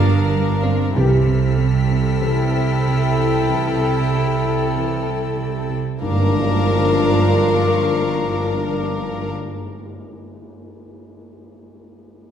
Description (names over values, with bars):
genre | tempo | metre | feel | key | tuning
cinematic, suspense film score | 95 BPM | 4/4 | straight | G minor | A4 = 440 Hz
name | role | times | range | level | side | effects
clear studio violin section | melody | 0.0-9.3 s | F5 to G5 | -30 LUFS | left 4 dB | none
warm chamber violin section | second line | 0.0-9.3 s | A4 to Bb4 | -25 LUFS | left 3 dB | none
warm chamber viola section | accompaniment | 0.0-9.3 s | D4 to E4 | -25 LUFS | left 2 dB | none
dark chamber cello section | riff | 0.0-5.9 s | G2 to C4 | -26 LUFS | right 1 dB | none
dark chamber double bass section | bass | 0.0-9.3 s | G1 to C2 | -24 LUFS | right 3 dB | none
warm chamber cello section | bass | 0.0-9.3 s | G2 to C3 | -21 LUFS | right 3 dB | none
music box | texture | 0.0-2.5 s | C4 to C5 | -32 LUFS | right 1 dB | none
warm chamber violin section | texture | 0.0-8.2 s | Bb5 to B6 | -34 LUFS | left 4 dB | none
dark French horn section | sustained chords | 1.0-9.3 s | E3 to Bb4 | -24 LUFS | left 1 dB | none
tam-tam | percussion | 6.0-10.0 s | none | -27 LUFS | equal | none
room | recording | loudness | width
wet scoring stage reverb, RT60 2.0 s | heard from further back in the room | -16 LUFS | side -8 dB against mid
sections
0.0-6.0 A section; 6.0-8.5 B section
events
band accent 6.0-6.6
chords
0.0 Gm7; 1.0 C6; 6.0 Gm7